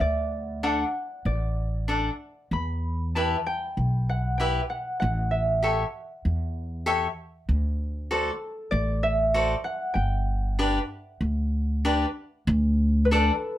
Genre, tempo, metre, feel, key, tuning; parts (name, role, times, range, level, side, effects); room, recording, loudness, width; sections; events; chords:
mexican folk, mariachi; 96 BPM; 4/4; straight; A4 = 439 Hz
concert harp; melody; 0.0-13.6 s; A4 to B5; -29 LUFS; right 1 dB
upright bass; bass; 0.0-13.3 s; G1 to E2; -25 LUFS; equal
cavaquinho; accompaniment; 0.6-13.3 s; D4 to F#5; -25 LUFS; left 2 dB
light reverb; -24 LUFS; side -13 dB against mid
0.0-12.5 A section; 12.5-13.6 A section
0.0 D; 2.5 Em; 5.0 A7; 7.5 D7; 10.0 G; 12.5 D